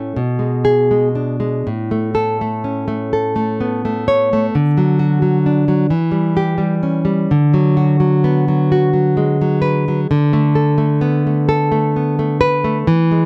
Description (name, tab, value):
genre	romantic piece for solo classical guitar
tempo	43 BPM (dotted quarters)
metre	6/8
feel	rubato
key	unclear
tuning	A4 = 441 Hz
part	nylon-string guitar	solo	0.0-13.3 s	A2 to C#5	-16 LUFS	equal	none
room	moderate studio reverb, RT60 0.6 s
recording	none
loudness	-16 LUFS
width	mono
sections	0.0-13.3 A section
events	none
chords	0.2 G#dim/B; 1.7 A; 4.5 D; 5.9 C#dim/E; 7.3 D6; 10.1 Bm7/D